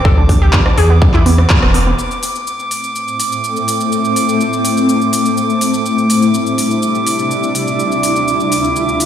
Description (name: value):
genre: progressive house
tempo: 124 BPM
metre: 4/4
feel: straight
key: A minor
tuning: A4 = 441 Hz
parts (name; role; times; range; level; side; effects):
- glassy wavetable pluck; arpeggios; 0.0-2.0 s; B3 to A4; -18 LUFS; right 1 dB; chorus, sidechain pumping, dub echo
- drifting glass-harmonics texture; texture; 0.0-9.1 s; D6; -19 LUFS; right 3 dB; chorus, built-in reverb, sidechain pumping
- round analog bass; bass; 0.1-1.9 s; E1 to E2; -12 LUFS; equal; tube saturation, sidechain pumping
- electronic kick drum; drums; 0.1-1.6 s; none; -11 LUFS; equal; none
- big-room dance drum kit; drums; 0.3-9.1 s; cabasa, handclaps, hi-hat, rim click; -21 LUFS; left 1 dB; none
- shimmering ambient pad; sustained chords; 3.1-9.1 s; D2 to F4; -15 LUFS; left 2 dB; chorus, built-in reverb, sidechain pumping
room: moderate lush hall reverb, RT60 2.0 s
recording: played on a big sound system in a bare room, large studio reverb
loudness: -11 LUFS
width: side -9 dB against mid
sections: 0.0-2.0 A section; 2.0-9.1 B section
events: band accent 1.5; filter sweep on ambient pad 2.0-9.1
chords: 0.1 Dsus2; 1.0 E5; 2.0 Am; 5.9 Cadd9; 7.8 Dmadd9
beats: | 0.05 0.53 1.02 1.50 | 1.99 2.47 2.95 3.44 | 3.92 4.41 4.89 5.37 | 5.86 6.34 6.82 7.31 | 7.79 8.28 8.76